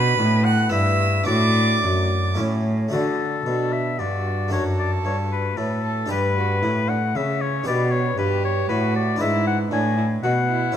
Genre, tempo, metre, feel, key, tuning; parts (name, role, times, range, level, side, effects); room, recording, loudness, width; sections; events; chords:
classical, baroque-style sonata movement with continuo; 114 BPM; 3/4; rubato; D major; A4 = 440 Hz
clear oboe; melody; 0.0-10.7 s; A4 to G#5; -25 LUFS; left 6 dB
rich violin; second line; 0.0-10.8 s; B3 to F#6; -27 LUFS; right 7 dB
harpsichord; accompaniment; 0.0-10.8 s; F#2 to B4; -27 LUFS; left 1 dB
rich cello; bass; 0.0-10.7 s; F#2 to D3; -22 LUFS; right 1 dB
moderate concert hall reverb, RT60 2.1 s; -19 LUFS; side -9 dB against mid
0.0-2.9 A section; 2.9-10.8 A section
0.0 Bm; 0.7 Em/G; 1.3 D/A; 2.4 A; 2.9 D; 4.5 D/F#; 6.1 G; 9.2 E7/G#